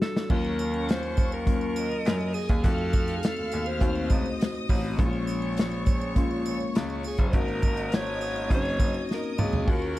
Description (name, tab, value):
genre	lush 1970s-style soul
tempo	102 BPM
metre	4/4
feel	straight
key	Eb dorian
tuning	A4 = 440 Hz
part	warm alto saxophone	melody	0.0-10.0 s	Ab4 to Db5	-32 LUFS	equal	analog delay
part	barky tine electric piano	accompaniment	0.0-10.0 s	Gb3 to F#4	-32 LUFS	left 3 dB	phaser
part	warm soul drum kit	drums	0.0-10.0 s	crash cymbal, hi-hat, kick drum, snare drum, splash cymbal, toms	-26 LUFS	equal	none
part	warm studio string section	second line	0.3-10.0 s	Db4 to F6	-37 LUFS	right 2 dB	analog delay
part	bright concert grand piano	bass	0.3-10.0 s	Gb1 to Gb2	-31 LUFS	equal	none
part	triangle	percussion	0.3-10.0 s	none	-47 LUFS	right 9 dB	none
room	small room ambience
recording	dark, warm production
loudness	-24 LUFS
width	side -16 dB against mid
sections	0.3-10.0 A section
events	drum fill 0.0-0.3, 9.1-9.7; stop 0.0-0.3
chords	0.3 Ebm9; 2.6 F7b9; 5.0 Bbm7; 7.3 Ab9sus4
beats	| 0.31 0.89 1.48 2.06 | 2.65 3.23 3.82 4.40 | 4.99 5.57 6.16 6.75 | 7.33 7.92 8.50 9.09 | 9.68